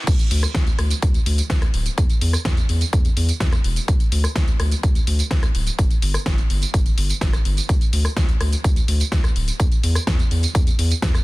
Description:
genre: EDM, festival progressive house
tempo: 126 BPM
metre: 4/4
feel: straight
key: unclear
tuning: A4 = 440 Hz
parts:
  - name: saturated sub bass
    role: bass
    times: 0.1-11.2 s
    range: D1 to E2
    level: -21 LUFS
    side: equal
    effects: sidechain pumping
  - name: big-room dance drum kit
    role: drums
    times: 0.1-11.2 s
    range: crash cymbal, hi-hat, rim click, snare drum, tambourine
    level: -26 LUFS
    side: equal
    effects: none
  - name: electronic kick drum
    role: drums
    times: 0.1-11.1 s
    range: none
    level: -18 LUFS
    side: equal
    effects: high-pass filter on kick
room: little or no reverb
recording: dense, heavily limited modern master, high-pass filter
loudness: -17 LUFS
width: side -20 dB against mid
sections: 0.1-11.2 A section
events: drop 0.1-11.2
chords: none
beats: | 0.07 0.55 1.02 1.50 | 1.98 2.45 2.93 3.41 | 3.88 4.36 4.83 5.31 | 5.79 6.26 6.74 7.21 | 7.69 8.17 8.64 9.12 | 9.60 10.07 10.55 11.03

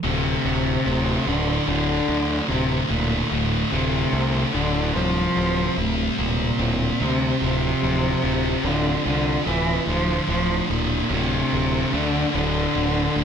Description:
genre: post-rock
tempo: 49 BPM (dotted quarters)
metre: 6/8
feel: straight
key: D minor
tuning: A4 = 443 Hz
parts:
  - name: rich cello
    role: melody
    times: 0.0-13.2 s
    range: A2 to F3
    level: -23 LUFS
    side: left 1 dB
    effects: slapback echo
  - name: sludgy distorted guitar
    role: riff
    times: 0.0-13.2 s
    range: D2 to C4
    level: -24 LUFS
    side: right 1 dB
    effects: overdrive
  - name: growling fingered electric bass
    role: bass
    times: 0.0-13.2 s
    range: D1 to D2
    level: -26 LUFS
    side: equal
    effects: overdrive
room: moderate large studio reverb, RT60 0.9 s, small room ambience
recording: none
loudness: -20 LUFS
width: side -7 dB against mid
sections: 0.0-13.2 A section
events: none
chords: 0.0 D5; 5.0 C7sus4/D; 7.4 F5/D; 9.9 D5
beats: | 0.04 1.27 | 2.49 3.72 | 4.95 6.18 | 7.41 8.64 | 9.87 11.11 | 12.34

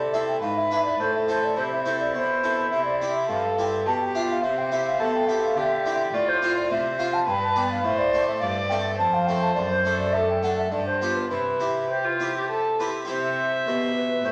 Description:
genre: classical, baroque-style sonata movement with continuo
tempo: 104 BPM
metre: 3/4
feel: straight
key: C major from 6.1 s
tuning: A4 = 441 Hz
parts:
  - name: warm violin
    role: melody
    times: 0.0-14.3 s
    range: D4 to E5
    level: -29 LUFS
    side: equal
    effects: none
  - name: baroque flute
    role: second line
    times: 0.0-14.3 s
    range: G4 to A5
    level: -28 LUFS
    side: equal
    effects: none
  - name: harpsichord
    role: accompaniment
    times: 0.0-14.3 s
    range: F2 to D5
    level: -31 LUFS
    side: equal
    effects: none
  - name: warm cello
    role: bass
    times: 0.0-14.3 s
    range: F2 to D3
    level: -37 LUFS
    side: equal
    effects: none
room: wet stone room reverb, RT60 1.3 s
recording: none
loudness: -24 LUFS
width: mono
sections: 0.0-13.1 A section; 13.1-14.3 B section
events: none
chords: 0.4 E7/G#; 1.0 Am; 2.7 C; 3.9 G7/B; 4.4 C; 6.1 F/A; 7.3 G; 7.8 Am; 9.0 F; 9.6 D7/F#; 10.7 G7; 11.3 C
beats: 0.42 | 1.00 1.57 2.15 | 2.72 3.29 3.86 | 4.43 5.00 5.57 | 6.13 6.70 7.27 | 7.84 8.41 8.99 | 9.56 10.14 10.72 | 11.31 11.91 12.50 | 13.10 13.68 14.25

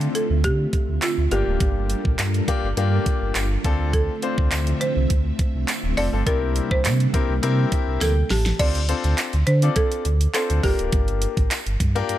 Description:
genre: dance-pop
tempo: 103 BPM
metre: 4/4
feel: straight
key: D minor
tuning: A4 = 439 Hz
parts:
  - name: folk marimba with medium hard mallets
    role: melody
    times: 0.0-12.2 s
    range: F4 to D5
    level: -26 LUFS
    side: right 2 dB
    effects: tape echo
  - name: clear baby grand piano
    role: accompaniment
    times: 0.0-12.2 s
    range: Bb3 to A5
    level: -27 LUFS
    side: left 7 dB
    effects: sidechain pumping
  - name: string machine, cellos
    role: sustained chords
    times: 0.0-8.6 s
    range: C3 to E5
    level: -29 LUFS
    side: equal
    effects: ensemble chorus, sidechain pumping
  - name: sub bass with octave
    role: bass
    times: 0.0-12.2 s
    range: D1 to D3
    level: -22 LUFS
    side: equal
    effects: sidechain pumping
  - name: pop drum kit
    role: drums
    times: 0.0-12.2 s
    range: crash cymbal, handclaps, hi-hat, kick drum, snare drum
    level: -24 LUFS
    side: equal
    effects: none
  - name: tambourine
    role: percussion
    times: 1.0-11.7 s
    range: none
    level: -35 LUFS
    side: right 11 dB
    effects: none
room: studio ambience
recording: none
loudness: -19 LUFS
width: side -13 dB against mid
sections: 0.0-8.6 A section; 8.6-12.2 B section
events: grand piano fill 7.4-8.6; drum fill 8.0-8.6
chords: 0.0 Dm7; 1.3 Gm7; 3.6 Dm7; 6.3 C7; 8.6 Dm7; 10.6 Gm7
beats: 0.44 1.02 | 1.61 2.19 2.77 3.35 | 3.94 4.52 5.10 5.68 | 6.27 6.85 7.43 8.01 | 8.60 9.18 9.76 10.34 | 10.93 11.51 12.09

